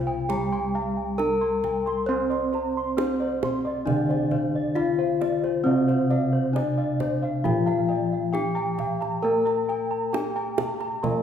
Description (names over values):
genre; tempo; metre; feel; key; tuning
Javanese gamelan; 67 BPM; 4/4; straight; C slendro; A4 = 441 Hz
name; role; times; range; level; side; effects
gamelan-type bronze metallophone; melody; 0.0-11.2 s; C4 to C5; -26 LUFS; left 1 dB; none
gamelan-type bronze metallophone; accompaniment; 0.0-11.2 s; C3 to C4; -30 LUFS; left 1 dB; none
gamelan-type bossed gongs; arpeggios; 0.0-11.2 s; C5 to C6; -33 LUFS; left 3 dB; none
gamelan-type bronze metallophone; arpeggios; 0.0-11.2 s; C5 to C6; -31 LUFS; right 3 dB; none
gamelan-type bossed gongs; bass; 0.0-11.2 s; C2 to C5; -32 LUFS; equal; none
kendang; percussion; 0.3-11.2 s; none; -32 LUFS; right 4 dB; none
room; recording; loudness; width
wet recital hall reverb, RT60 1.6 s; recorded in a church or concert hall; -22 LUFS; side -8 dB against mid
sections
0.0-11.2 A section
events
none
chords
none